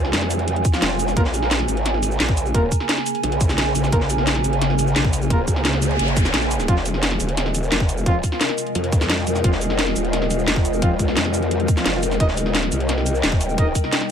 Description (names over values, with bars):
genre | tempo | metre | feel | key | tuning
dark technical drum and bass | 174 BPM | 4/4 | straight | F minor | A4 = 440 Hz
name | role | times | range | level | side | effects
swarming drone | sustained chords | 0.0-14.1 s | C3 to Ab4 | -26 LUFS | left 1 dB | built-in reverb, sidechain pumping
growl bass | bass | 0.0-13.7 s | Eb1 to F2 | -23 LUFS | equal | chorus, overdrive
drum and bass drum kit | drums | 0.0-14.1 s | hi-hat, shaker, snare drum | -23 LUFS | equal | none
warbly tape-like pad | texture | 0.0-14.1 s | Bb4 to Ab5 | -27 LUFS | right 1 dB | chorus, built-in reverb, sidechain pumping
electronic kick drum | drums | 0.6-13.8 s | none | -19 LUFS | equal | overdrive
dark brass ensemble | stabs | 0.7-13.7 s | F3 to Eb5 | -28 LUFS | equal | tape echo
noise sweep | sound effects | 5.8-6.7 s | none | -30 LUFS | equal | none
room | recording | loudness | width
light reverb | none | -17 LUFS | side -8 dB against mid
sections
0.0-14.1 A section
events
noise sweep 5.8-6.7; kick drops out 6.3-6.7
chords
0.0 Fm; 1.2 Bbm7; 6.7 Fm; 12.2 Eb6